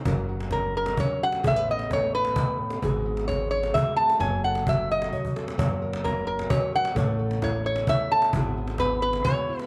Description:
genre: acoustic folk duo or small band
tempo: 131 BPM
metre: 3/4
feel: straight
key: unclear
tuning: A4 = 444 Hz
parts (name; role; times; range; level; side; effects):
- nylon-string guitar; accompaniment; 0.0-9.7 s; G#2 to C#5; -34 LUFS; equal; none
- upright bass; bass; 0.1-9.2 s; F#1 to A1; -34 LUFS; equal; none
- cajon; percussion; 0.1-9.7 s; none; -31 LUFS; equal; none
- lap resonator guitar; melody; 0.5-9.7 s; A#4 to A5; -27 LUFS; equal; none
room: moderate spring reverb, RT60 1.7 s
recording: none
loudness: -25 LUFS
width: mono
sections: 0.1-9.7 A section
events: drum fill 5.1-5.6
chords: 0.1 F#; 1.4 Asus2; 2.8 Amaj13/G# (rootless); 4.2 F#m; 5.6 F#; 7.0 A; 8.3 Eadd9/G#

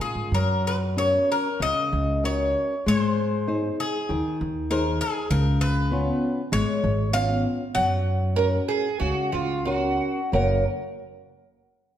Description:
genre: fado-style ballad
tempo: 96 BPM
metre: 4/4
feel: uneven beats, rubato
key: F# major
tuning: A4 = 445 Hz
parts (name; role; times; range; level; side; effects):
- Irish bouzouki; melody; 0.0-9.6 s; Ab4 to F#5; -26 LUFS; left 1 dB; none
- picked twelve-string acoustic guitar; second line; 0.0-0.3, 8.4-10.6 s; E#4 to A#4; -26 LUFS; right 4 dB; lush chorus
- nylon-string guitar; accompaniment; 0.0-10.6 s; F#2 to F#5; -26 LUFS; left 2 dB; none
- upright bass; bass; 0.0-10.6 s; F#1 to Bb2; -26 LUFS; right 1 dB; none
room: moderate recital hall reverb, RT60 1.5 s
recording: none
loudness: -22 LUFS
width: side -10 dB against mid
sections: 0.3-10.3 A section; 10.3-12.0 B section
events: none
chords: 0.3 F#; 2.9 G#; 5.3 C#7; 7.8 F#

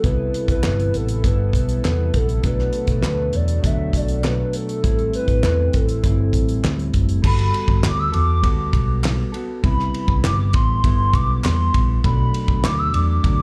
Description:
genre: indie pop, bedroom pop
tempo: 100 BPM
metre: 4/4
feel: straight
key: G major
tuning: A4 = 441 Hz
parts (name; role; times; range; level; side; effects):
- hollow clarinet-like synth lead; melody; 0.0-13.4 s; A4 to E6; -27 LUFS; equal; analog chorus, slapback echo, tape echo
- mellow electric guitar; accompaniment; 0.0-13.4 s; A2 to A4; -29 LUFS; equal; lush chorus, warbly pitch drift
- warm analog pad; sustained chords; 0.0-7.2 s; E3 to A4; -35 LUFS; equal; chorus
- vintage muted fingered electric bass; bass; 0.0-13.4 s; F#1 to E2; -22 LUFS; equal; none
- damped 70s drum kit; drums; 0.0-13.4 s; crash cymbal, hi-hat, kick drum, ride cymbal, snare drum; -23 LUFS; equal; none
- group handclap; percussion; 0.6-12.8 s; none; -34 LUFS; equal; slapback echo
room: little or no reverb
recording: live gig heard through the venue's PA, club reverb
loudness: -19 LUFS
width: mono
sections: 0.0-7.2 A section; 7.2-13.4 B section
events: none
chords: 0.0 Cmaj7; 2.4 Bm7; 4.8 Am7; 7.2 Gmaj9; 9.6 Cmaj7; 12.0 Bm7

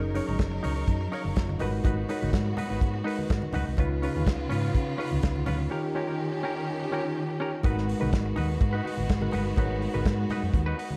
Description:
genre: disco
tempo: 124 BPM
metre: 4/4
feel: straight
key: G# dorian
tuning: A4 = 440 Hz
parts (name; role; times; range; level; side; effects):
- mellow tine electric piano; accompaniment; 0.0-11.0 s; C#3 to C#6; -35 LUFS; equal; none
- semi-hollow electric guitar; accompaniment; 0.0-11.0 s; C#4 to C#5; -38 LUFS; equal; spring reverb
- clear studio string section; sustained chords; 0.0-11.0 s; C#3 to A#4; -37 LUFS; equal; none
- hollow-body short-scale fingered electric bass; bass; 0.0-10.7 s; F#1 to C#3; -32 LUFS; equal; none
- warm soul drum kit; drums; 0.2-10.9 s; hi-hat, kick drum, snare drum; -30 LUFS; equal; none
- congas; percussion; 0.2-11.0 s; none; -40 LUFS; equal; none
room: studio reverb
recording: dark, warm production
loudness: -28 LUFS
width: mono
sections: 0.0-7.6 A section; 7.6-11.0 B section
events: break 5.7-7.6; tine electric piano fill 10.8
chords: 0.0 F#6; 1.6 G#m7; 3.8 C#7; 5.7 D#7; 7.6 G#m7

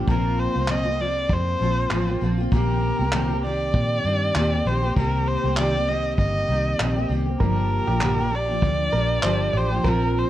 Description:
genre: acoustic pop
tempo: 98 BPM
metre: 4/4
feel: swing 55% on 16ths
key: G minor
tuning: A4 = 440 Hz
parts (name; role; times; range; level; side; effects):
- picked steel-string acoustic guitar; accompaniment; 0.0-10.3 s; G2 to G4; -25 LUFS; equal; double-tracked left and right
- vintage muted fingered electric bass; bass; 0.0-10.2 s; G1 to Bb2; -24 LUFS; equal; none
- rich erhu; melody; 0.1-10.3 s; Bb4 to Eb5; -25 LUFS; equal; plate reverb
- vintage brush drum kit; drums; 0.1-10.0 s; handclaps, kick drum; -26 LUFS; equal; none
- direct-recorded clean electric guitar; arpeggios; 7.4-10.1 s; G4 to D5; -32 LUFS; right 4 dB; plate reverb
room: moderate studio reverb, RT60 0.6 s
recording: worn, warbling old tape, cassette tape, warbly pitch drift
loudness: -20 LUFS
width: side -13 dB against mid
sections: 0.0-10.3 A section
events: none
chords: 0.1 Bbsus2; 2.5 Eb6/Bb; 5.0 Cm7; 7.4 Gm7

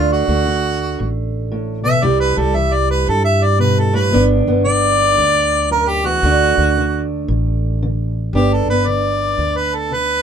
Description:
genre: acoustic country blues, solo or duo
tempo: 114 BPM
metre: 4/4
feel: swing 65% on 8ths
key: G major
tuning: A4 = 442 Hz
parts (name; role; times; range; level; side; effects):
- mellow harmonica; melody; 0.0-10.2 s; F4 to E5; -16 LUFS; equal; none
- fingerpicked steel-string acoustic guitar; accompaniment; 0.0-10.2 s; D2 to G4; -20 LUFS; right 2 dB; none
- upright bass; bass; 0.0-10.2 s; G1 to G2; -19 LUFS; equal; none
room: light reverb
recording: close, detailed microphones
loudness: -14 LUFS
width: side -8 dB against mid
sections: 0.0-8.3 A section; 8.3-10.2 A section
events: harmonica solo 0.0-10.2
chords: 0.0 D; 2.0 C; 4.1 G; 6.2 D; 8.3 G

